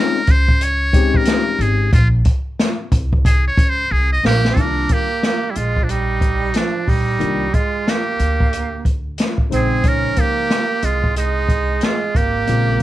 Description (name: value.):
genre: hip hop, jazz-hop.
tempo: 91 BPM.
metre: 4/4.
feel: swing 62% on 16ths.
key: C phrygian.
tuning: A4 = 439 Hz.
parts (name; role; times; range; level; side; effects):
trumpet with metal mute; melody; 0.0-12.8 s; D4 to Eb5; -21 LUFS; equal; cassette tape.
tine electric piano; accompaniment; 0.0-12.8 s; Db3 to C5; -22 LUFS; left 9 dB; medium stereo tremolo.
upright bass; bass; 0.3-12.8 s; Ab1 to D2; -19 LUFS; equal; none.
open jazz drum kit; drums; 0.3-12.8 s; hi-hat, kick drum, snare drum; -18 LUFS; equal; none.
breathy tenor saxophone; second line; 4.3-12.8 s; F3 to D4; -22 LUFS; right 7 dB; none.
room: little or no reverb.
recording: home recording on cassette.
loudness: -15 LUFS.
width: side -15 dB against mid.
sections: 0.0-4.6 A section; 4.6-12.8 B section.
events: muted trumpet solo 0.0-4.6; drum fill 3.9-4.6.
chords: 0.0 Bbm11; 4.6 Cm11 (rootless); 9.5 Bbm11.